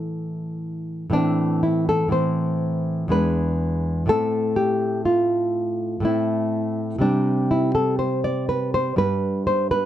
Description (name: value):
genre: classical, baroque-style dance for nylon-string guitar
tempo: 61 BPM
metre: 3/4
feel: rubato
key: A minor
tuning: A4 = 438 Hz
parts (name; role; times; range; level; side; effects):
- nylon-string guitar; solo; 0.0-9.9 s; E2 to D5; -20 LUFS; equal; none
room: light reverb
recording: dark, warm production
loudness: -20 LUFS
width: side -11 dB against mid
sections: 0.0-1.1 A section; 1.1-9.9 A section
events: none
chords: 0.0 Am; 3.1 E7; 4.1 Am; 7.0 C5; 9.0 G